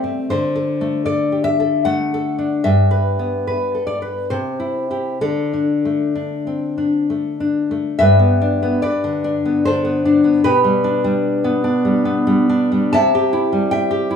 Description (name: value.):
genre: romantic piece for solo classical guitar.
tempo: 63-79 BPM.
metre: 3/4.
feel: rubato.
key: G major.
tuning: A4 = 443 Hz.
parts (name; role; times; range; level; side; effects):
nylon-string guitar; solo; 0.0-14.2 s; G2 to A5; -15 LUFS; left 1 dB; none.
room: light reverb, studio ambience.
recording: rough home demo mix, small room ambience.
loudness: -15 LUFS.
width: side -7 dB against mid.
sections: 0.0-8.0 A section; 8.0-14.2 B section.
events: none.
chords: 0.3 D7; 2.7 G; 4.3 C; 5.2 D5; 8.0 G; 10.4 G/B; 12.9 C.